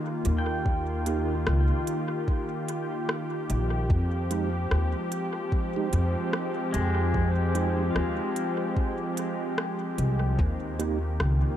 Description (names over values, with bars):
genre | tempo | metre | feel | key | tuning
ambient dub | 74 BPM | 4/4 | swing 60% on 16ths | F minor | A4 = 437 Hz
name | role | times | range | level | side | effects
warm analog pad | sustained chords | 0.0-11.6 s | Eb3 to G4 | -30 LUFS | left 1 dB | wide subtle chorus
pedal steel guitar | arpeggios | 0.0-11.6 s | Ab3 to G5 | -37 LUFS | equal | vintage 12-bit sampler grit, dub echo
organic electronic drum kit | drums | 0.2-11.4 s | hi-hat, rim click | -36 LUFS | equal | overdrive, studio reverb, dub echo
upright bass | bass | 0.3-11.4 s | Bb1 to F2 | -26 LUFS | equal | none
electronic kick drum | drums | 0.7-10.6 s | none | -27 LUFS | equal | overdrive, studio reverb
mellow tonewheel organ | stabs | 1.1-11.0 s | Ab3 to G4 | -36 LUFS | right 6 dB | none
room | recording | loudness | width
light reverb | none | -25 LUFS | side -11 dB against mid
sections
0.0-11.6 A section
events
none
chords
0.0 Eb; 3.9 Fm7; 10.4 Eb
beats
| 0.66 1.47 2.28 3.09 | 3.90 4.71 5.53 6.33 | 7.15 7.96 8.77 9.58 | 10.39 11.20